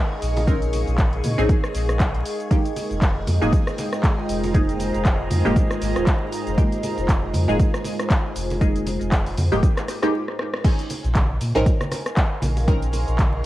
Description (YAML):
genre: deep house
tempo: 118 BPM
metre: 4/4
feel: swing 57% on 16ths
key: Bb minor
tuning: A4 = 442 Hz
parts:
  - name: deep dark ambient pad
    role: sustained chords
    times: 0.1-13.5 s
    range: Ab3 to Db6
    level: -31 LUFS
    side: right 1 dB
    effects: chorus, built-in reverb, sidechain pumping
  - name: filtered dub chord stab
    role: stabs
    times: 0.0-13.5 s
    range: Ab3 to Bb4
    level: -26 LUFS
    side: equal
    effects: phaser, wide subtle chorus, sidechain pumping, tape echo
  - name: ethereal airy pad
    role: texture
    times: 0.0-13.5 s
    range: F4 to F5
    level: -33 LUFS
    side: equal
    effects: ensemble chorus, built-in reverb, phaser, sidechain pumping
  - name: string machine, violins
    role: texture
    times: 0.0-10.1 s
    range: Ab4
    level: -37 LUFS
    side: left 1 dB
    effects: ensemble chorus, sidechain pumping
  - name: sub bass with octave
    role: bass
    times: 0.2-13.4 s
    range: Eb1 to Bb2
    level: -24 LUFS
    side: equal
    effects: sidechain pumping
  - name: deep house drum kit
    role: drums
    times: 0.2-13.3 s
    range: crash cymbal, handclaps, hi-hat, rim click, shaker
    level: -29 LUFS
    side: equal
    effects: vintage 12-bit sampler grit
  - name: congas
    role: percussion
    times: 0.4-13.3 s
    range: none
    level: -30 LUFS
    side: right 1 dB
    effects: none
  - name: electronic kick drum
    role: drums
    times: 0.5-13.3 s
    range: none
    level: -19 LUFS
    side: equal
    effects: vintage 12-bit sampler grit
room: light reverb, digital ambience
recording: vinyl crackle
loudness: -19 LUFS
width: side -15 dB against mid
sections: 0.0-10.6 A section; 10.6-13.5 B section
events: stop 10.1-10.6; drum fill 10.3-10.6; band accent 10.5; drop 10.6-13.5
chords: 0.0 Bbm11; 2.3 Fm11; 10.6 Bbm11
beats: | 0.48 0.98 1.49 2.00 | 2.51 3.02 3.53 4.04 | 4.54 5.05 5.56 6.07 | 6.58 7.09 7.60 8.10 | 8.61 9.12 9.63 10.14 | 10.65 11.15 11.66 12.17 | 12.68 13.19